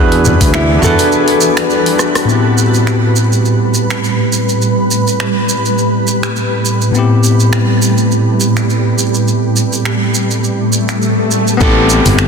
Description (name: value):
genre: sunset chillout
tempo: 103 BPM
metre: 4/4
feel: swing 55% on 16ths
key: A dorian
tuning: A4 = 441 Hz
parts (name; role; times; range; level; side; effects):
- nylon-string guitar; melody; 0.0-2.0, 11.6-12.3 s; E4 to A4; -17 LUFS; right 1 dB; ping-pong delay
- barky tine electric piano; accompaniment; 0.0-12.3 s; A2 to B4; -14 LUFS; moving between left 5 dB and right 5 dB; auto-pan, low-pass filter, ping-pong delay
- shimmering ambient pad; sustained chords; 0.0-12.3 s; A2 to B4; -15 LUFS; right 1 dB; chorus, built-in reverb
- modern bright fingered electric bass; bass; 0.0-0.9, 11.6-12.3 s; G1 to E2; -14 LUFS; equal; none
- deep house drum kit; drums; 0.1-12.3 s; finger snaps, hi-hat, rim click, shaker, toms; -18 LUFS; right 1 dB; soft clipping on snare
- electronic kick drum; drums; 0.4-0.5, 11.6-11.7 s; none; -12 LUFS; equal; none
- swell and downlifter; sound effects; 10.7-12.3 s; none; -16 LUFS; equal; none
room: moderate lush hall reverb, RT60 2.2 s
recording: dense, heavily limited modern master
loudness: -10 LUFS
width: side -5 dB against mid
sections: 0.0-2.3 A section; 2.3-11.6 B section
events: filter sweep on tine electric piano 0.0-2.3, 2.3-11.6; drum fill 2.0; filter sweep on ambient pad 2.3-11.6; swell 10.7-11.6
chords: 0.0 E7; 1.1 Gmaj9; 2.3 Am9